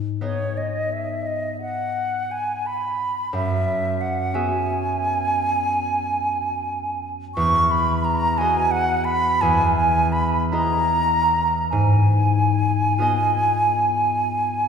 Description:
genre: classical, impressionist duo for flute and harp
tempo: 47-61 BPM (dotted quarters)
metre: 12/8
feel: rubato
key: G# minor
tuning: A4 = 440 Hz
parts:
  - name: concert harp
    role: accompaniment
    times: 0.0-14.7 s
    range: E2 to E5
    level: -23 LUFS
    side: left 1 dB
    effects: none
  - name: bright silver concert flute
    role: melody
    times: 0.2-14.7 s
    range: C#5 to C#6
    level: -20 LUFS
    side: right 1 dB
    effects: none
room: wet concert hall reverb, RT60 1.9 s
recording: heard from further back in the room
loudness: -19 LUFS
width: side -6 dB against mid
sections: 0.0-14.7 A section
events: none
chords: 0.0 G#m7; 3.3 F#9sus4; 7.4 Emaj9; 9.4 Emaj7; 11.7 G#m6

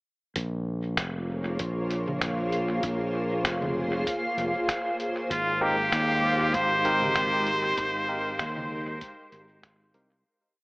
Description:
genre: ambient dub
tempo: 97 BPM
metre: 4/4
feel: swing 55% on 16ths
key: Bb dorian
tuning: A4 = 439 Hz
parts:
  - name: granular cloud pad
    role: sustained chords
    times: 0.9-10.3 s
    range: Ab3 to Db5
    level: -32 LUFS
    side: equal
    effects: built-in reverb
  - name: overdriven fingered electric bass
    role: bass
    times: 0.4-10.2 s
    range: F1 to Eb2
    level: -32 LUFS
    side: equal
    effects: none
  - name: electronic kick drum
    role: drums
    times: 0.4-9.8 s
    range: none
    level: -41 LUFS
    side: equal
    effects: none
  - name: lo-fi sampler-style drum kit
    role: drums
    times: 0.4-10.1 s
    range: congas, finger snaps, hi-hat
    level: -32 LUFS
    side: equal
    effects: dub echo
  - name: backwards swelling texture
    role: texture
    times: 2.1-10.3 s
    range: F5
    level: -34 LUFS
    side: equal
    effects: built-in reverb
  - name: trumpet with straight mute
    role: melody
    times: 5.3-9.6 s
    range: F4 to C5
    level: -26 LUFS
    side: equal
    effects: dub echo
  - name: barky tine electric piano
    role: stabs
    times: 5.6-10.1 s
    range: C4 to Bb4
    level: -32 LUFS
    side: equal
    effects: overdrive, dub echo
room: wet spring reverb, RT60 1.9 s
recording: AM radio sound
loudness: -25 LUFS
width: side -34 dB against mid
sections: 0.4-10.3 groove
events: fade-out 7.0-10.3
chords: 0.4 Bbm7; 5.3 Abmaj7

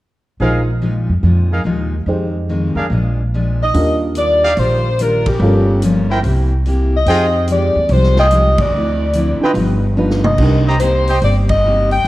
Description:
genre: jazz, big band swing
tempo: 144 BPM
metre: 4/4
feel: swing 66% on 8ths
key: Eb major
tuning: A4 = 440 Hz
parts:
  - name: picked steel-string acoustic guitar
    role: accompaniment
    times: 0.4-11.9 s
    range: F2 to G4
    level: -22 LUFS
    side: left 2 dB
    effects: none
  - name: warm upright piano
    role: accompaniment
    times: 0.4-10.7 s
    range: C4 to C5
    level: -21 LUFS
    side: right 1 dB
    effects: none
  - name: clear trumpet section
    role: stabs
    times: 0.4-11.2 s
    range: D4 to Bb5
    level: -22 LUFS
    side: right 1 dB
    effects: none
  - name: upright bass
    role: bass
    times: 0.4-12.1 s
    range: F1 to F2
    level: -16 LUFS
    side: equal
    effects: none
  - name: dark saxophone section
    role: melody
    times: 3.6-12.1 s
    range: G4 to G5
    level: -16 LUFS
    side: left 1 dB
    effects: none
  - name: swinging big-band drum kit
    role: drums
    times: 3.7-12.1 s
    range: crash cymbal, hi-hat, kick drum, ride cymbal, snare drum, toms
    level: -23 LUFS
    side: right 1 dB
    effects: none
room: light reverb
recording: worn, warbling old tape, cassette tape, warbly pitch drift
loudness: -12 LUFS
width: side -17 dB against mid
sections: 0.4-3.7 A section; 3.7-12.1 B section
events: band accent 5.2, 8.5, 11.4; drum fill 10.0-10.4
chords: 0.4 Bb7sus4; 2.1 Fm7; 2.9 Bb7; 3.7 Ebmaj9; 5.4 Gm7b5; 6.2 C7; 7.1 Fm9; 8.7 Dm9; 9.6 G7b13; 10.4 Cm7

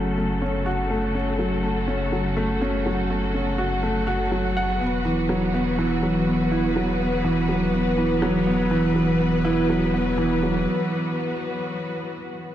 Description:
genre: piano and strings electronica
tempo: 123 BPM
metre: 4/4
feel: straight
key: unclear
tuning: A4 = 439 Hz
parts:
  - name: warm symphonic string section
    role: sustained chords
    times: 0.0-12.5 s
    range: C#3 to B4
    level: -27 LUFS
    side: left 2 dB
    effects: low-pass filter
  - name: dark grand piano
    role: riff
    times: 0.0-12.5 s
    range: E3 to F#5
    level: -22 LUFS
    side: right 1 dB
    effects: digital delay
  - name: warm sub bass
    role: bass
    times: 0.0-10.7 s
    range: E1 to F#1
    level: -29 LUFS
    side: equal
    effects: none
room: wet concert hall reverb, RT60 2.2 s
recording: dark, warm production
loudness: -20 LUFS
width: side -11 dB against mid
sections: 0.0-12.5 A section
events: build-up 0.0-12.5; break 10.7-12.5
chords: 0.0 F#m; 4.8 Esus2

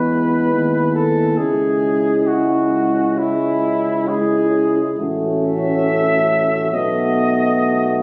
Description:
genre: classical, hymn-like piece for brass band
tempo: 67 BPM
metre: 4/4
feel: rubato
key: unclear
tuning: A4 = 439 Hz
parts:
  - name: mellow cornet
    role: melody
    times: 0.0-8.0 s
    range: E4 to E5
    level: -22 LUFS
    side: equal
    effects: none
  - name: mellow French horn section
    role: second line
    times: 0.0-8.0 s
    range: E4 to F#4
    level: -24 LUFS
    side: equal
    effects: none
  - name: clear trombone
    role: accompaniment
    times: 0.0-8.0 s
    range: G#3 to A3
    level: -26 LUFS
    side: equal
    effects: none
  - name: mellow euphonium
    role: accompaniment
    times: 0.0-8.0 s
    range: B3 to C#4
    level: -26 LUFS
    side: equal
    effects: none
  - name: mellow tuba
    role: bass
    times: 0.0-8.0 s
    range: A1 to E2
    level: -26 LUFS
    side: equal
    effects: none
room: moderate scoring stage reverb, RT60 1.8 s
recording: recorded on a phone in the room, studio reverb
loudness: -17 LUFS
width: mono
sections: 0.0-8.0 A section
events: none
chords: 0.0 E; 1.4 C#m; 5.0 F#m/A; 6.7 B7

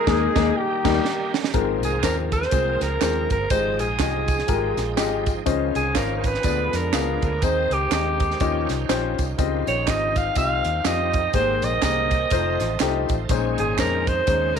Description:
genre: uptempo gospel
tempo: 123 BPM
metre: 4/4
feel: swing 59% on 8ths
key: Ab major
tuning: A4 = 440 Hz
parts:
  - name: mellow horn section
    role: melody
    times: 0.0-1.5 s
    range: Bb3 to Ab4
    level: -24 LUFS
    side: left 1 dB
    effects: none
  - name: bright tonewheel organ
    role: sustained chords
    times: 0.0-14.6 s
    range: D3 to G5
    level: -33 LUFS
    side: right 10 dB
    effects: slow rotary speaker, chorus vibrato
  - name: warm grand piano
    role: accompaniment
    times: 0.1-14.6 s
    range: Ab2 to F5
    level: -25 LUFS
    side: left 12 dB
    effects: none
  - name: vintage muted fingered electric bass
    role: bass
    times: 0.1-14.6 s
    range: F1 to F2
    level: -28 LUFS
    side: right 1 dB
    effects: none
  - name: crisp fusion drum kit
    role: drums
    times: 0.1-14.6 s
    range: crash cymbal, hi-hat, kick drum, snare drum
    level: -26 LUFS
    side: right 4 dB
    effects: none
  - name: mellow French horn section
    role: sustained chords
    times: 1.5-14.6 s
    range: Db3 to C5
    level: -34 LUFS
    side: right 2 dB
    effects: none
  - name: tambourine and handclaps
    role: percussion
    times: 1.5-14.6 s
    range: none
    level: -33 LUFS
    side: right 4 dB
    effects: none
  - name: raspy alto saxophone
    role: melody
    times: 1.8-14.6 s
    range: G4 to F5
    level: -24 LUFS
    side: right 2 dB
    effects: slapback echo
room: moderate spring reverb, RT60 1.2 s, small room ambience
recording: 1960s-style stereo with parts hard left and right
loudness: -20 LUFS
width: side -7 dB against mid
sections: 0.0-1.5 A section; 1.5-14.6 B section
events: band accent 0.0-1.5; drum fill 1.1-1.5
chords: 0.0 Ebsus4; 0.6 Eb; 1.5 Ab69; 3.5 Fm9/Ab; 5.5 Dbmaj9; 6.4 Ddim7; 7.4 Ab; 8.4 Eb9; 9.4 Dbmaj9#11; 11.3 Abmaj9; 12.3 F7; 13.3 Bbm11

